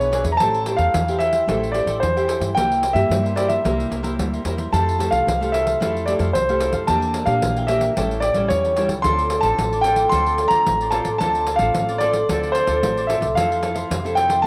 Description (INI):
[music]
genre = samba and choro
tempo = 111 BPM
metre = 4/4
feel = straight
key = D minor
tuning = A4 = 440 Hz
[part]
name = warm concert grand piano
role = melody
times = 0.0-14.5 s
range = C5 to C6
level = -22 LUFS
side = equal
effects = none
[part]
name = cavaquinho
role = accompaniment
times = 0.0-14.5 s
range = D4 to G5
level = -35 LUFS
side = equal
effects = none
[part]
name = nylon-string guitar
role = accompaniment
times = 0.0-14.5 s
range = A2 to C5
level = -27 LUFS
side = equal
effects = none
[part]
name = upright bass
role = bass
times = 0.0-14.5 s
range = A1 to Bb2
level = -28 LUFS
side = equal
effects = none
[part]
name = pandeiro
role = percussion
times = 0.0-14.4 s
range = none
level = -30 LUFS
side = equal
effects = none
[sound]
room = wet spring reverb, RT60 2.5 s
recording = home recording on cassette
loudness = -20 LUFS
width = mono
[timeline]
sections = 0.0-13.4 A section; 13.4-14.5 B section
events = none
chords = 0.4 Am7; 2.6 C7; 4.7 Fmaj9; 6.9 Em7b5; 8.0 A7; 9.0 Dm7; 13.4 Fmaj7